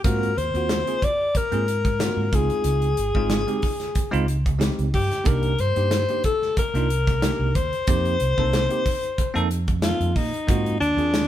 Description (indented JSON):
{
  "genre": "electric jazz fusion",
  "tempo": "92 BPM",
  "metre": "4/4",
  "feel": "swing 53% on 16ths",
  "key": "unclear",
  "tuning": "A4 = 439 Hz",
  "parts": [
    { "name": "breathy alto saxophone", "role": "melody", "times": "0.0-11.3 s", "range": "D4 to D5", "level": "-24 LUFS", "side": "left 3 dB", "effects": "none" },
    { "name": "bell-like tine electric piano", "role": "accompaniment", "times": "0.0-11.2 s", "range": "Ab3 to Bb4", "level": "-28 LUFS", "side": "right 3 dB", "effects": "medium stereo tremolo" },
    { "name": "mellow fretless electric bass", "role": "bass", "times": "0.0-11.3 s", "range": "Ab1 to Bb2", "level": "-24 LUFS", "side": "right 1 dB", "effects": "none" },
    { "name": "modern studio drum kit", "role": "drums", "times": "0.0-11.3 s", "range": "hi-hat, kick drum, snare drum", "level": "-25 LUFS", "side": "equal", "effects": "none" }
  ],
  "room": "light reverb",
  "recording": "band playing live in one room",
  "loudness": "-20 LUFS",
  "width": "side -12 dB against mid",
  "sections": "0.0-11.3 A section",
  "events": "none",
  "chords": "0.0 Ab13; 2.3 Dbmaj9; 5.3 Cm9; 7.9 F9sus4; 10.5 Ab13"
}